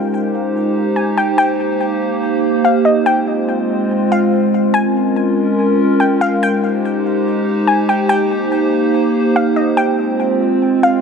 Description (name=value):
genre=hip hop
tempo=143 BPM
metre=4/4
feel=half-time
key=Db lydian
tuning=A4 = 440 Hz
part: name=glassy wavetable pluck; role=melody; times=0.0-11.0 s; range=Eb5 to Ab5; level=-19 LUFS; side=left 2 dB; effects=chorus, ping-pong delay
part: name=warbly tape-like pad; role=sustained chords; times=0.0-11.0 s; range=Ab3 to C5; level=-14 LUFS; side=right 1 dB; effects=chorus, built-in reverb
room=moderate huge ambient reverb, RT60 4.1 s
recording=none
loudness=-13 LUFS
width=side -6 dB against mid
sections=0.0-4.7 A section; 4.7-11.0 B section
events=none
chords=0.0 Abmaj7; 1.4 Cm7; 3.1 Fm; 4.7 Db6; 6.4 Abmaj7; 8.1 Cm7; 9.8 Fm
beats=0.12 0.55 0.96 | 1.38 1.80 2.22 2.64 | 3.06 3.48 3.90 4.32 | 4.74 5.16 5.58 6.00 | 6.42 6.84 7.26 7.68 | 8.10 8.52 8.94 9.36 | 9.78 10.20 10.62